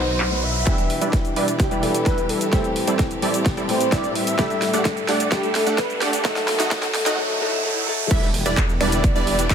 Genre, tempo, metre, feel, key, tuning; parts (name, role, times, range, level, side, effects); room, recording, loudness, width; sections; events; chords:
EDM, festival progressive house; 129 BPM; 4/4; straight; E minor; A4 = 438 Hz
breathy flute-like synth lead; melody; 0.0-6.7 s; G4 to E5; -27 LUFS; right 2 dB; ensemble chorus, tape echo
picked old ladder-braced acoustic guitar; accompaniment; 0.0-8.1 s; B2 to D#5; -26 LUFS; left 4 dB; sidechain pumping, tape echo
clear studio string section; sustained chords; 0.0-9.5 s; A2 to G4; -32 LUFS; right 1 dB; sidechain pumping
detuned saw bass; bass; 0.0-0.6, 8.1-9.5 s; E1 to B1; -26 LUFS; equal; sidechain pumping
riser and swell; sound effects; 0.0-8.1 s; -30 LUFS; right 3 dB
big-room dance drum kit; drums; 0.2-9.5 s; crash cymbal, finger snaps, handclaps, hi-hat, shaker, snare drum; -27 LUFS; equal; overdrive, high-pass filter on snare, low-pass filter on snare, small room ambience, high-pass filter on hats, low-pass filter on hats, high-pass filter on perc, low-pass filter on perc, high-pass filter on cymbals, low-pass filter on cymbals
supersaw stab; riff; 0.7-9.5 s; G3 to G5; -25 LUFS; right 2 dB; sidechain pumping, low-pass filter, tape echo
electronic kick drum; drums; 0.7-9.5 s; -21 LUFS; equal; overdrive, small room ambience
plucky unison lead; arpeggios; 8.1-9.5 s; D5 to E5; -26 LUFS; equal; sidechain pumping, tape echo
light reverb, digital ambience; high-pass filter; -18 LUFS; side -8 dB against mid
0.7-8.1 A section; 8.1-9.5 B section
riser 0.0-0.7, 0.7-8.1; build-up 0.7-8.1; drum fill 0.7-7.2; filter sweep on supersaw synth 0.7-8.1; filter sweep 0.7-8.1; swell 7.2-8.1; drop 8.1-9.5
0.0 B; 0.7 Em7; 2.5 Am7; 4.4 Dsus4; 6.2 B; 8.1 Em7